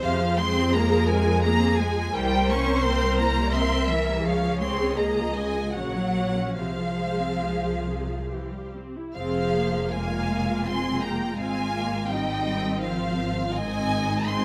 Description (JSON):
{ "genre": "classical, slow romantic movement for string orchestra", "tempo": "68-87 BPM", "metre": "3/4", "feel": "rubato", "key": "F minor", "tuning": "A4 = 439 Hz", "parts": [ { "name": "rich studio violin section", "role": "melody", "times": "0.0-14.4 s", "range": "E5 to Db6", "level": "-32 LUFS", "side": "equal", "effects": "none" }, { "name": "warm studio violin section", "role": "second line", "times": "0.0-14.4 s", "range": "Ab4 to Ab5", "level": "-35 LUFS", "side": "equal", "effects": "none" }, { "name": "warm studio viola section", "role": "accompaniment", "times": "0.0-14.4 s", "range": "C3 to Bb4", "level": "-31 LUFS", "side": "equal", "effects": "none" }, { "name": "rich studio cello section", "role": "bass", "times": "0.0-14.4 s", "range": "E3 to Db4", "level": "-31 LUFS", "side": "equal", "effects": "none" }, { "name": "rich studio double bass section", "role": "bass", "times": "0.0-14.4 s", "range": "F1 to F2", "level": "-31 LUFS", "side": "equal", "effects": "none" } ], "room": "light reverb", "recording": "close, detailed microphones", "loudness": "-25 LUFS", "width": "mono", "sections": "0.0-9.2 A section; 9.2-14.4 B section", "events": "none", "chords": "0.0 Fm; 2.1 C7b9; 4.3 Db; 5.8 Gb/Bb; 6.6 Fm/C; 8.3 C; 9.2 Fm; 11.4 Fm/Ab; 13.5 Ab" }